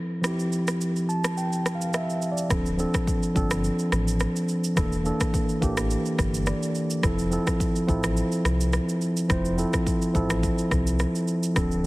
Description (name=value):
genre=afrobeats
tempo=106 BPM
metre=4/4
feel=swing 55% on 16ths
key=F major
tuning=A4 = 436 Hz
part: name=mellow tine electric piano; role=accompaniment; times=0.0-11.9 s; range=E3 to A5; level=-25 LUFS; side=equal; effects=low-pass filter
part: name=afro-pop drum kit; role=drums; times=0.2-11.8 s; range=kick drum, rim click, shaker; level=-28 LUFS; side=equal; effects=none
part: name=sub bass with octave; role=bass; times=2.5-11.9 s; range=D1 to C2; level=-27 LUFS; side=equal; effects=none
room=moderate plate reverb, RT60 2.5 s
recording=heavily compressed radio sound, multiband compression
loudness=-22 LUFS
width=side -20 dB against mid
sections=0.0-2.5 A section; 2.5-11.9 B section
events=tine electric piano fill 0.8-2.5, 6.2-7.0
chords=0.0 Fmaj7; 2.5 Dm7; 4.8 Em7b5; 7.0 Fmaj7